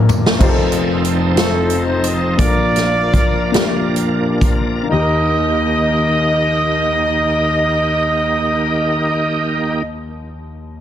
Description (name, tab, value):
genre	slow gospel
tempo	39-64 BPM (dotted quarters)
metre	6/8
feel	straight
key	Eb major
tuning	A4 = 441 Hz
part	warm baby grand piano	accompaniment	0.0-10.8 s	F1 to C5	-20 LUFS	left 3 dB	none
part	swinging big-band drum kit	drums	0.1-4.6 s	crash cymbal, hi-hat, kick drum, snare drum, toms	-16 LUFS	equal	none
part	bright tonewheel organ	sustained chords	0.4-9.8 s	Eb3 to Bb4	-21 LUFS	right 3 dB	slow rotary speaker, chorus vibrato
part	clear horn section	melody	1.4-9.8 s	C4 to Eb5	-18 LUFS	right 1 dB	slapback echo
room	studio ambience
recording	dense, heavily limited modern master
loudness	-14 LUFS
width	side -10 dB against mid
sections	0.4-4.9 A section; 4.9-10.8 B section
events	drum fill 0.0-0.4; slowing down 0.4-4.9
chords	0.4 F7; 2.4 Bb; 4.9 Eb